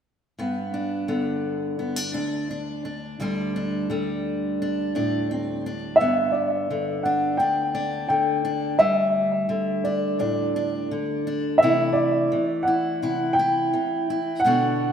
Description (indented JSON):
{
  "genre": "folk",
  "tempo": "85 BPM",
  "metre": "4/4",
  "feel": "straight",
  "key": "G major",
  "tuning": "A4 = 441 Hz",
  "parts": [
    { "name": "fingerpicked steel-string acoustic guitar", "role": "accompaniment", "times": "0.4-14.9 s", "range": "D2 to F#4", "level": "-25 LUFS", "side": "equal", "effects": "none" },
    { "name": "dark upright piano", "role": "melody", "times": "6.0-14.9 s", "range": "D5 to G5", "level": "-22 LUFS", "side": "equal", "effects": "digital delay" }
  ],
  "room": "wet lush hall reverb, RT60 2.3 s",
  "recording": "rough home demo mix",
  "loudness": "-21 LUFS",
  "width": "side -8 dB against mid",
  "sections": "0.4-6.0 A section; 6.0-14.9 B section",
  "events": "none",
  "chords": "0.4 G; 3.2 Dsus4; 6.0 G; 8.8 Dsus4; 11.6 Am/C",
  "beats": "| 0.38 1.08 1.78 2.48 | 3.19 3.89 4.59 5.29 | 5.99 6.70 7.40 8.10 | 8.80 9.51 10.21 10.91 | 11.62 12.32 13.03 13.73 | 14.44"
}